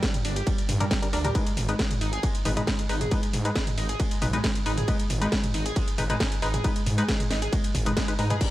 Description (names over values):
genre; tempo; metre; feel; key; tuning
driving peak-time techno; 136 BPM; 4/4; straight; unclear; A4 = 440 Hz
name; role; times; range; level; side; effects
overdriven synth lead; riff; 0.0-8.5 s; G3 to Ab4; -32 LUFS; right 1 dB; distortion, tube saturation, wide subtle chorus, cassette tape, sidechain pumping, dub echo
electronic kick drum; drums; 0.0-8.5 s; none; -27 LUFS; equal; distortion
techno drum kit; drums; 0.0-8.5 s; crash cymbal, hi-hat, ride cymbal, snare drum, toms; -29 LUFS; right 1 dB; none
detuned saw bass; bass; 0.2-8.4 s; G1 to Ab2; -28 LUFS; equal; sidechain pumping
filtered dub chord stab; stabs; 0.8-8.5 s; G3 to Cb5; -33 LUFS; left 2 dB; chorus, sidechain pumping, dub echo
room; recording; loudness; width
light reverb; none; -23 LUFS; side -15 dB against mid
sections
0.0-8.5 A section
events
none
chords
0.0 Gm; 1.4 Abm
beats
0.03 0.47 0.91 | 1.35 1.79 2.23 2.67 | 3.11 3.56 4.00 4.44 | 4.88 5.32 5.76 6.20 | 6.64 7.08 7.53 7.97 | 8.41